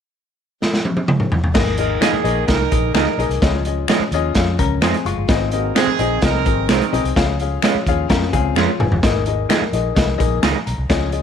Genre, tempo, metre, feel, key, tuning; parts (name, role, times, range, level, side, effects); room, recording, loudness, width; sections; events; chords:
uptempo 1960s-style soul; 128 BPM; 4/4; straight; Ab major; A4 = 441 Hz
raw garage drum kit; drums; 0.6-11.2 s; crash cymbal, hi-hat, kick drum, snare drum, toms; -19 LUFS; equal
dark upright piano; accompaniment; 1.5-11.2 s; Bb3 to Db6; -22 LUFS; left 13 dB
vintage muted fingered electric bass; bass; 1.5-11.2 s; Gb1 to F2; -22 LUFS; equal
warm horn section; second line; 1.8-7.0 s; Eb3 to Bb4; -22 LUFS; right 13 dB
electric guitar through a small old amp; stabs; 2.0-10.6 s; Eb3 to Ab4; -22 LUFS; right 14 dB
finger snap; percussion; 2.0-10.5 s; -26 LUFS; left 12 dB
vintage hollow-body jazz guitar; riff; 4.6-9.0 s; Ab3 to Bb4; -23 LUFS; left 12 dB
small room ambience; 1960s-style stereo with parts hard left and right; -15 LUFS; side -8 dB against mid
0.0-1.6 A section; 1.6-9.0 B section; 9.0-11.2 C section
drum fill 0.6-1.6, 8.6-9.0
0.0 N.C.; 1.6 Absus2; 3.4 Dbadd9; 5.3 Ab; 7.2 Db; 9.0 Absus2